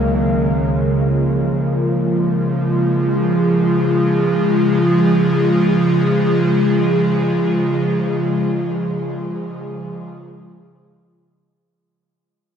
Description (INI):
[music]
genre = ambient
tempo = free time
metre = none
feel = none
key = Db major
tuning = A4 = 435 Hz
[part]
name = airy breathy pad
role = sustained chords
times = 0.0-11.6 s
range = Db2 to F5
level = -15 LUFS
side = equal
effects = chorus
[part]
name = bright tine electric piano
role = arpeggios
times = 0.0-0.8 s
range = none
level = barely audible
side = none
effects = none
[part]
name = bowed-like drone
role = drone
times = 0.0-0.8 s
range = Db3 to Ab3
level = -24 LUFS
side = right 1 dB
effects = built-in reverb
[sound]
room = wet huge ambient reverb, RT60 7.4 s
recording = in a vast, echoing space, cassette tape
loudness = -14 LUFS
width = side -8 dB against mid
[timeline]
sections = 0.7-11.6 A section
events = fade-out 7.9-11.6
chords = 0.0 Ebmadd9/Db; 0.7 Db